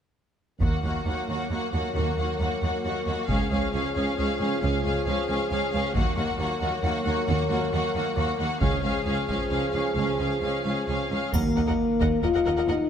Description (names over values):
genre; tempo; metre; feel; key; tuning
cinematic, epic orchestral film score; 135 BPM; 3/4; straight; Eb minor; A4 = 437 Hz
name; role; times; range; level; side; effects
warm symphonic violin section; melody; 0.6-12.7 s; F5 to Gb5; -33 LUFS; left 2 dB; none
clear studio violin section; second line; 0.6-12.7 s; Gb4 to Eb5; -34 LUFS; left 2 dB; none
rich symphonic viola section; accompaniment; 0.6-12.7 s; Bb3 to Bb4; -32 LUFS; equal; none
dark French horn section; sustained chords; 0.6-12.9 s; F3 to Bb4; -28 LUFS; left 2 dB; none
bright symphonic cello section; bass; 0.6-12.7 s; Db2 to Eb2; -30 LUFS; right 2 dB; none
dark studio double bass section; bass; 0.6-12.7 s; Db2 to Eb2; -30 LUFS; right 3 dB; none
taiko ensemble; drums; 0.6-12.2 s; none; -31 LUFS; equal; none
timpani; percussion; 11.3-12.0 s; Eb3; -35 LUFS; right 1 dB; none
triangle; percussion; 11.3-12.2 s; none; -41 LUFS; left 3 dB; none
sub drop; sound effects; 11.5-12.7 s; none; -38 LUFS; equal; none
room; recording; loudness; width
moderate scoring stage reverb, RT60 1.7 s; none; -23 LUFS; side -8 dB against mid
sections
0.6-11.3 A section; 11.3-12.9 B section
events
build-up 0.6-11.3; impact 11.3-12.7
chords
0.6 Ebm; 3.3 Db; 6.0 Ebm; 8.6 Db; 11.3 Ebm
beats
| 0.61 1.06 1.51 | 1.96 2.40 2.85 | 3.30 3.74 4.19 | 4.63 5.07 5.51 | 5.96 6.39 6.84 | 7.28 7.73 8.17 | 8.62 9.06 9.51 | 9.97 10.43 10.89 | 11.34 11.79 12.24 | 12.68